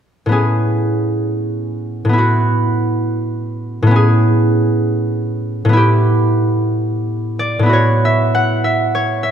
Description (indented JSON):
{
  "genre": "classical, solo harp piece",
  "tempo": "86-103 BPM",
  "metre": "3/4",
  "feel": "rubato",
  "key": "A major",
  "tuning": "A4 = 440 Hz",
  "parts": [
    { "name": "concert harp", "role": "solo", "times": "0.3-9.3 s", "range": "A2 to F#5", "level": "-13 LUFS", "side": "equal", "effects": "none" }
  ],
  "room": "moderate concert hall reverb, RT60 1.7 s",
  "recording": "none",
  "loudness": "-13 LUFS",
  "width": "side -8 dB against mid",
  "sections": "0.4-7.7 A section; 7.7-9.3 B section",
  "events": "none",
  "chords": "0.4 Amaj9; 2.2 F#m11/A; 4.0 Amaj9; 5.8 G69/A; 7.7 A69"
}